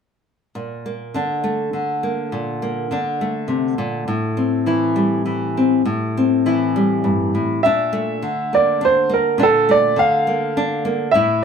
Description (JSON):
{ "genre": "folk", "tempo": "102 BPM", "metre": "3/4", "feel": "straight", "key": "unclear", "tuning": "A4 = 440 Hz", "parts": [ { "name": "nylon-string guitar", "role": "accompaniment", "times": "0.6-11.4 s", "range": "G2 to E4", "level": "-19 LUFS", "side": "left 1 dB", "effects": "none" }, { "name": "clear upright piano", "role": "melody", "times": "7.6-11.4 s", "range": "A4 to F5", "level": "-16 LUFS", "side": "right 2 dB", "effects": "none" } ], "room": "wet small room reverb, RT60 0.5 s", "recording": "none", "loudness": "-16 LUFS", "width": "side -7 dB against mid", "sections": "0.6-7.6 A section; 7.6-11.4 B section", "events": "none", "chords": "0.6 Bbmaj7; 4.1 Am7; 7.6 Bbmaj7" }